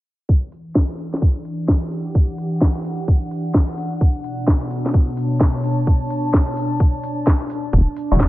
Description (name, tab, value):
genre	UK garage, two-step garage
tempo	129 BPM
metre	4/4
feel	swing 65% on 16ths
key	E minor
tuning	A4 = 440 Hz
part	electronic kick drum	drums	0.3-8.3 s	none	-15 LUFS	equal	none
part	warbly tape-like pad	texture	0.7-8.3 s	B2 to A5	-24 LUFS	equal	chorus, built-in reverb, sidechain pumping
part	garage drum kit	drums	0.5-8.3 s	hi-hat, snare drum	-22 LUFS	equal	none
part	deep soft wobble bass	bass	7.7-8.3 s	E1	-16 LUFS	equal	chorus, sidechain pumping
part	percussive organ stab	stabs	8.1-8.2 s	G3 to F#4	-20 LUFS	left 1 dB	chorus, phaser
room	digital ambience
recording	echo-heavy mix, low-pass filter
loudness	-17 LUFS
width	side -16 dB against mid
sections	0.3-8.3 A section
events	filter sweep 0.3-8.3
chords	0.3 Em9; 4.0 Bm9; 7.7 Em9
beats	| 0.29 0.76 1.22 1.69 | 2.15 2.62 3.08 3.55 | 4.01 4.48 4.94 5.41 | 5.87 6.34 6.80 7.27 | 7.73 8.20